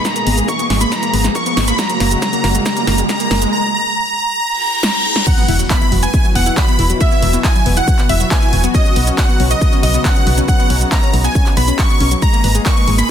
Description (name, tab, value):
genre	uplifting trance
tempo	138 BPM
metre	4/4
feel	straight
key	unclear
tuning	A4 = 441 Hz
part	supersaw chords	melody	0.0-13.1 s	D#5 to C#6	-18 LUFS	right 1 dB	sidechain pumping, low-pass filter, tape echo
part	muted studio string section	sustained chords	0.0-13.1 s	B2 to G#4	-24 LUFS	equal	sidechain pumping
part	electronic kick drum	drums	0.0-12.7 s	none	-15 LUFS	equal	high-pass filter on kick
part	riser, reverse cymbal and impact	sound effects	0.0-7.0 s	none	-23 LUFS	equal	none
part	wide unison pluck	arpeggios	0.1-13.0 s	F#3 to B4	-21 LUFS	left 2 dB	sidechain pumping, ping-pong delay
part	punchy analog drum machine	drums	0.1-13.1 s	crash cymbal, handclaps, hi-hat, ride cymbal, shaker, snare drum	-21 LUFS	equal	none
part	solid FM bass	bass	0.3-13.0 s	E1 to B1	-16 LUFS	equal	sidechain pumping
part	wide unison pluck	second line	5.3-13.1 s	D#5 to C#6	-27 LUFS	right 1 dB	none
room	light reverb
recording	dense, heavily limited modern master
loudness	-12 LUFS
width	side -9 dB against mid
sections	0.0-5.3 A section; 5.3-13.1 B section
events	build-up 0.0-5.3; drum fill 0.0-3.5, 4.8-5.3; riser 0.0-3.5; reverse cymbal 4.6-5.3; drop 5.3-13.1; impact 5.3-7.0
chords	0.0 G#madd9; 1.8 F#6; 5.3 Esus2; 8.7 Badd9; 12.2 G#madd9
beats	| 0.05 0.48 0.92 1.35 | 1.79 2.22 2.66 3.09 | 3.53 3.96 4.40 4.83 | 5.27 5.70 6.14 6.57 | 7.01 7.44 7.88 8.31 | 8.75 9.18 9.62 10.05 | 10.48 10.92 11.36 11.79 | 12.22 12.66 13.09